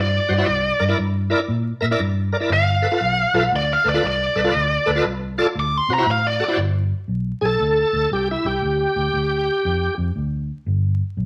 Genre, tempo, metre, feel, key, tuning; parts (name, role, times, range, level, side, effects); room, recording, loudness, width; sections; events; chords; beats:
electric blues shuffle; 118 BPM; 4/4; swing 65% on 8ths; G mixolydian; A4 = 440 Hz
biting lead guitar; melody; 0.0-6.6 s; D5 to D6; -22 LUFS; equal; overdrive
vintage muted fingered electric bass; bass; 0.0-11.3 s; G1 to C3; -25 LUFS; equal
bright tonewheel organ; accompaniment; 0.3-9.9 s; E4 to E5; -24 LUFS; equal; slow rotary speaker, overdrive, chorus vibrato
wet studio reverb, RT60 0.8 s; vinyl crackle; -20 LUFS; mono
0.0-6.6 A section; 6.6-11.3 A section
lead electric guitar solo 0.0-6.6
0.5 C7 (rootless); 2.5 G7 (rootless); 5.6 D7; 6.6 G5
| 0.46 0.97 1.48 1.99 | 2.50 3.01 3.52 4.03 | 4.54 5.05 5.56 6.07 | 6.58 7.09 7.60 8.11 | 8.62 9.13 9.64 10.15 | 10.66 11.17